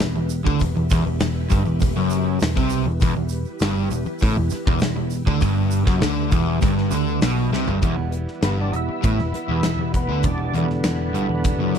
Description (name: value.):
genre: classic rock.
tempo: 100 BPM.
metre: 4/4.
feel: straight.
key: E minor.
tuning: A4 = 437 Hz.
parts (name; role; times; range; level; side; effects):
string machine, cellos; sustained chords; 0.0-11.8 s; B3 to E5; -34 LUFS; equal; ensemble chorus.
crunchy overdriven guitar; riff; 0.0-11.8 s; E2 to D3; -25 LUFS; right 10 dB; harmonic tremolo.
overdriven semi-hollow guitar; riff; 0.0-11.8 s; E2 to D3; -25 LUFS; left 12 dB; none.
picked electric bass; bass; 0.0-11.8 s; E1 to D2; -24 LUFS; equal; none.
gated 80s drum kit; drums; 0.0-11.8 s; hi-hat, kick drum, snare drum, toms; -23 LUFS; equal; none.
egg shaker; percussion; 0.0-7.7 s; none; -39 LUFS; right 19 dB; none.
picked acoustic archtop guitar; accompaniment; 7.8-11.8 s; E2 to E4; -33 LUFS; right 10 dB; none.
overdriven tonewheel organ; melody; 8.4-11.8 s; D3 to E4; -27 LUFS; equal; slow rotary speaker, chorus vibrato.
room: little or no reverb.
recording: none.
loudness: -18 LUFS.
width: side -8 dB against mid.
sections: 0.0-7.8 A section; 7.8-11.8 B section.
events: drum fill 7.5-7.8; tonewheel organ solo 7.8-11.8.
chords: 0.0 Em.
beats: 0.01 | 0.61 1.21 1.81 2.41 | 3.01 3.61 4.21 4.82 | 5.42 6.02 6.62 7.23 | 7.83 8.43 9.04 9.64 | 10.24 10.85 11.45.